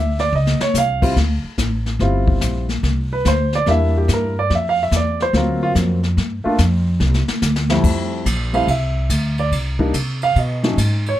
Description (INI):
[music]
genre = jazz piano trio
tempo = 144 BPM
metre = 4/4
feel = swing 66% on 8ths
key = F major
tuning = A4 = 440 Hz
[part]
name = warm grand piano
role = melody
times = 0.0-11.2 s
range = F2 to F5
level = -19 LUFS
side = right 1 dB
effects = none
[part]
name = upright bass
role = bass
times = 0.0-11.2 s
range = G1 to C3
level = -19 LUFS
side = equal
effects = none
[part]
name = jazz brush drum kit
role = drums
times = 0.2-11.1 s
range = brushed snare drum, crash cymbal, hi-hat, kick drum, ride cymbal, snare drum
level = -23 LUFS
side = left 2 dB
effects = none
[sound]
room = little or no reverb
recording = none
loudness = -16 LUFS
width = side -13 dB against mid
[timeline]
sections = 0.0-7.8 A section; 7.8-11.2 A section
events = grand piano solo 0.0-11.2; drum fill 0.3-0.7, 7.0-7.8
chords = 0.3 Eb7sus2; 1.2 Dm11; 2.8 C9; 4.5 Dmadd9; 5.3 D7alt; 6.2 G7(no3); 7.0 Csus2; 7.8 Fmaj7; 9.5 N.C.; 10.4 Badd9